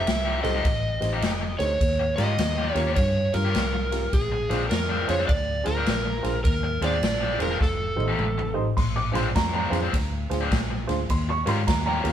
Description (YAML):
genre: electric blues shuffle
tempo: 104 BPM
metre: 4/4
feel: swing 64% on 8ths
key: Bb mixolydian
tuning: A4 = 438 Hz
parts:
  - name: overdriven slide guitar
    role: melody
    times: 0.0-8.5 s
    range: Ab4 to E5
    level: -27 LUFS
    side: right 1 dB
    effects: none
  - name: vintage muted fingered electric bass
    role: bass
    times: 0.0-12.1 s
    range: E1 to Ab2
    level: -27 LUFS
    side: equal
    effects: none
  - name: overdriven electric guitar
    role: riff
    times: 0.1-12.1 s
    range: Bb2 to G4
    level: -30 LUFS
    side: left 4 dB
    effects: none
  - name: swinging big-band drum kit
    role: drums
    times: 0.1-12.1 s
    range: crash cymbal, kick drum, ride cymbal, snare drum, toms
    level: -27 LUFS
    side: equal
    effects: none
  - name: warm upright piano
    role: accompaniment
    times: 0.4-12.1 s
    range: C4 to C5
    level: -31 LUFS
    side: right 3 dB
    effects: none
  - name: warm upright piano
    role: second line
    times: 8.8-12.1 s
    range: G5 to D6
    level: -29 LUFS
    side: right 2 dB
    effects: none
room: light reverb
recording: band playing live in one room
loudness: -22 LUFS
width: side -10 dB against mid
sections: 0.0-8.8 A section; 8.8-12.1 B section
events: drum fill 7.6-8.8; upright piano solo 8.8-12.1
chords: 0.0 F9; 1.8 Eb9; 4.1 Bb9; 7.6 F9; 8.8 Bb9; 11.1 Eb9